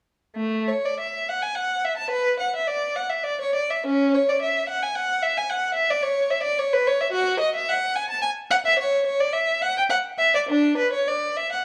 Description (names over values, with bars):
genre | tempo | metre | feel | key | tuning
classical, baroque-style suite movement for unaccompanied violin | 90-112 BPM | 3/4 | rubato | unclear | A4 = 440 Hz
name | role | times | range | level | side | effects
rich violin | solo | 0.4-11.6 s | A3 to A5 | -23 LUFS | equal | none
room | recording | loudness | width
moderate recital hall reverb, RT60 1.6 s | dark, warm production | -23 LUFS | mono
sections
0.4-11.6 A section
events
none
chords
none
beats
| 0.36 0.98 1.55 | 2.12 2.68 3.24 | 3.84 4.41 4.96 | 5.51 6.05 6.59 | 7.13 7.67 8.22 | 8.78 9.34 9.90 | 10.48 11.07